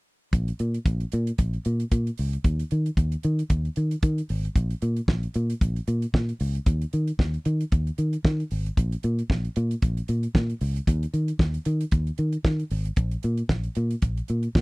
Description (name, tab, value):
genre	disco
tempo	114 BPM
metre	4/4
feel	swing 56% on 16ths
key	Bb minor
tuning	A4 = 440 Hz
part	fingered electric bass	bass	0.3-14.6 s	Ab1 to Eb3	-25 LUFS	equal	none
part	damped 70s drum kit	drums	0.3-14.6 s	hi-hat, kick drum, snare drum	-22 LUFS	equal	none
room	little or no reverb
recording	dry, close 1970s-style studio recording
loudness	-23 LUFS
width	side -27 dB against mid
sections	0.3-14.6 A section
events	none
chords	none